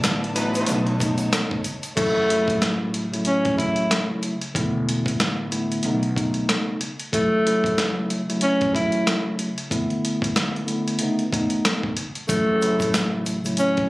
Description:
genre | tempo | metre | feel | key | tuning
hip hop, boom-bap hip-hop | 93 BPM | 4/4 | swing 58% on 16ths | F# minor | A4 = 440 Hz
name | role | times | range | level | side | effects
mellow tine electric piano | accompaniment | 0.0-13.9 s | C#3 to E4 | -24 LUFS | equal | cassette tape, high-pass filter, low-pass filter
warm studio string section | sustained chords | 0.0-2.0 s | E3 to A5 | -34 LUFS | equal | high-pass filter, low-pass filter
upright bass | bass | 0.0-6.4, 12.3-13.9 s | E1 to B1 | -30 LUFS | equal | none
dusty soul sampler-style drum kit | drums | 0.0-13.9 s | crash cymbal, hi-hat, kick drum, rim click, snare drum | -25 LUFS | equal | none
tube shaker | percussion | 0.0-2.0, 12.3-13.8 s | none | -39 LUFS | right 1 dB | none
warm horn section | stabs | 0.3-0.8 s | F#3 to B4 | -29 LUFS | equal | high-pass filter, low-pass filter, tape echo
breathy tenor saxophone | melody | 2.0-13.9 s | A3 to E4 | -22 LUFS | equal | high-pass filter, low-pass filter, tape echo
room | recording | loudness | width
little or no reverb | recorded on a phone in the room, club reverb | -20 LUFS | side -20 dB against mid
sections
0.0-2.0 A section; 2.0-13.9 B section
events
none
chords
0.0 E7sus4; 0.7 B9; 2.0 F#m7; 4.6 E7sus4; 5.8 B9; 7.1 F#m7; 9.7 E7sus4; 11.0 B9; 12.3 F#m7

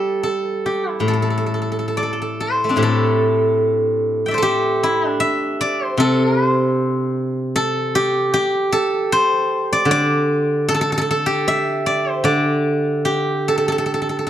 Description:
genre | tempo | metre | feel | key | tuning
chinese traditional, Chinese solo plucked strings | 76 BPM | 4/4 | uneven beats, rubato | A yu mode | A4 = 440 Hz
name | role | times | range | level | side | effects
steel-string zither | solo | 0.0-14.3 s | A2 to G5 | -16 LUFS | equal | none
room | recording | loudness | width
moderate recital hall reverb, RT60 1.5 s | dark, warm production | -16 LUFS | side -11 dB against mid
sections
0.0-2.8 A section; 2.8-14.3 B section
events
none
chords
none

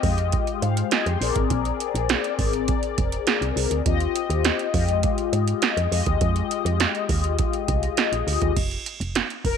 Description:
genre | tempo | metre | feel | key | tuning
early-eighties boogie funk | 102 BPM | 4/4 | straight | F dorian | A4 = 441 Hz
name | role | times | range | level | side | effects
mellow synth brass | accompaniment | 0.0-9.6 s | Ab3 to C6 | -25 LUFS | left 12 dB | chorus, phaser
woody FM bass | bass | 0.0-9.6 s | F1 to Ab2 | -25 LUFS | right 1 dB | none
electro analog drum machine | drums | 0.0-9.6 s | crash cymbal, hi-hat, kick drum, snare drum | -24 LUFS | right 4 dB | none
room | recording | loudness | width
digital ambience | 1960s-style stereo | -20 LUFS | side -7 dB against mid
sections
0.0-8.6 A section; 8.6-9.6 B section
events
analog polysynth solo 8.6-9.6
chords
0.0 Fm9; 1.2 Bb9; 3.9 Eb69; 4.7 Fm9; 8.6 N.C.

